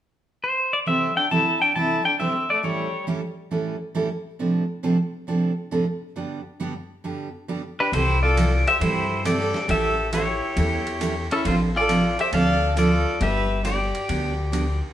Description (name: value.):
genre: country, western swing.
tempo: 136 BPM.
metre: 4/4.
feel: swing 68% on 8ths.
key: C major.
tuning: A4 = 438 Hz.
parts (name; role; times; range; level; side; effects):
pedal steel guitar; melody; 0.4-3.0, 7.8-14.8 s; C#4 to A5; -23 LUFS; left 2 dB; none.
rich fiddle; second line; 0.9-3.1, 7.8-14.8 s; G3 to D5; -28 LUFS; right 2 dB; none.
picked steel-string acoustic guitar; accompaniment; 0.9-14.6 s; G2 to A4; -25 LUFS; right 2 dB; none.
upright bass; bass; 7.9-14.8 s; G1 to G2; -25 LUFS; left 1 dB; none.
boom bap sampler-style drum kit; drums; 7.9-14.7 s; hi-hat, ride cymbal, snare drum; -35 LUFS; right 2 dB; none.
room: wet stone room reverb, RT60 1.0 s.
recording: band playing live in one room.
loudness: -20 LUFS.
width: side -11 dB against mid.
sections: 0.9-7.9 A section; 7.9-14.9 B section.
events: none.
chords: 0.0 N.C.; 0.9 C6; 2.6 A7; 4.4 Dm7/A; 6.2 G; 7.9 C6; 9.7 A7; 11.4 Dm7/A; 13.2 G.